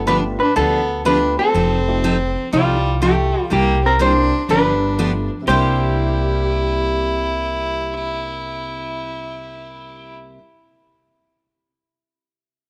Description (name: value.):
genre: country, western swing.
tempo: 122 BPM.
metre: 4/4.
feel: swing 68% on 8ths.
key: C mixolydian.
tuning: A4 = 440 Hz.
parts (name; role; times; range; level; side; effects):
vintage hollow-body jazz guitar; melody; 0.0-10.3 s; F4 to C5; -21 LUFS; equal; none.
clear fiddle; second line; 0.0-10.2 s; G3 to E4; -26 LUFS; equal; none.
dark upright piano; accompaniment; 0.0-10.4 s; C3 to Bb4; -31 LUFS; equal; none.
upright bass; bass; 0.0-10.3 s; F1 to D2; -25 LUFS; equal; none.
picked steel-string acoustic guitar; accompaniment; 0.1-10.4 s; C3 to A4; -27 LUFS; equal; none.
clean lap steel guitar; second line; 5.5-10.2 s; G4; -32 LUFS; equal; none.
room: light reverb, small room ambience.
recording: none.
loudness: -18 LUFS.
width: mono.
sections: 0.0-5.5 A section; 5.5-9.4 B section.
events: none.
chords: 0.0 G9; 1.5 F9; 3.5 C9; 4.5 G9; 5.5 C9.